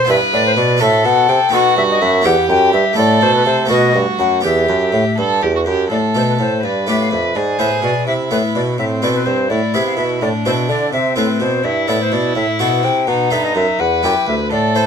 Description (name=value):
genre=classical, baroque-style sonata movement with continuo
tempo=83 BPM (dotted quarters)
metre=6/8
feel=straight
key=E minor, A minor from 5.9 s, E minor from 11.6 s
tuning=A4 = 439 Hz
part: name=mellow alto recorder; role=melody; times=0.0-14.9 s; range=B4 to G5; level=-18 LUFS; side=left 5 dB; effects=none
part: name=dark violin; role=second line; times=0.0-14.9 s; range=C4 to C5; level=-19 LUFS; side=right 5 dB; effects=none
part: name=harpsichord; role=accompaniment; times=0.0-14.9 s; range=D2 to B4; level=-19 LUFS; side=left 2 dB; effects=none
part: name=warm bassoon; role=bass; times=0.1-14.9 s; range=D2 to D3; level=-19 LUFS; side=right 2 dB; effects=none
room=light reverb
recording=close, detailed microphones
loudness=-13 LUFS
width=side -7 dB against mid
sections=0.0-5.9 A section; 5.9-14.9 A section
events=none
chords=0.1 Em/G; 0.8 F#dim/A; 1.5 B7; 2.3 Em; 3.0 Am; 3.7 B7; 4.4 Em; 5.9 A5; 6.6 G; 7.4 E/G#; 8.8 Am; 9.5 E/A; 10.2 Am; 11.6 Em/G; 12.4 F#m7b5/A; 13.1 B7; 13.8 Em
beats=| 0.09 0.81 | 1.53 2.25 | 2.98 3.71 | 4.44 5.18 | 5.92 6.64 | 7.36 8.08 | 8.79 9.50 | 10.21 10.93 | 11.65 12.36 | 13.08 13.80 | 14.52